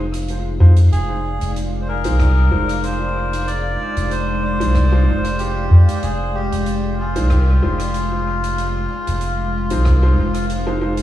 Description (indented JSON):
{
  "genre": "ambient dub",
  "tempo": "94 BPM",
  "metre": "4/4",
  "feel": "swing 54% on 16ths",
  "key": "F dorian",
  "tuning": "A4 = 440 Hz",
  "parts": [
    { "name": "deep dark ambient pad", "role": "sustained chords", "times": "0.0-11.0 s", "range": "Ab3 to F5", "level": "-26 LUFS", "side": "left 1 dB", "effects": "chorus, built-in reverb" },
    { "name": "soft dub sub bass", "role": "bass", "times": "0.0-11.0 s", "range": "F1 to F2", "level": "-16 LUFS", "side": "equal", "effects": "tube saturation" },
    { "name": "soft-mallet drum kit", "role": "drums", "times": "0.1-11.0 s", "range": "hi-hat, rim click", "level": "-34 LUFS", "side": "right 1 dB", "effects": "dub echo" },
    { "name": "clear upright piano", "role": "stabs", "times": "0.6-11.0 s", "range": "Ab3 to C5", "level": "-27 LUFS", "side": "right 1 dB", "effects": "dub echo" },
    { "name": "melodica", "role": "melody", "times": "0.9-10.5 s", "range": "F4 to D5", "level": "-24 LUFS", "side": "left 1 dB", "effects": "dub echo" },
    { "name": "electronic kick drum", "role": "drums", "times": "2.2-10.0 s", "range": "none", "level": "-22 LUFS", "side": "equal", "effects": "none" }
  ],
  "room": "light reverb, studio reverb",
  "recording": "vinyl crackle, small room ambience",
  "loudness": "-15 LUFS",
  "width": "side -13 dB against mid",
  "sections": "0.0-11.0 A section",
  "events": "none",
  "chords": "0.0 Fm7"
}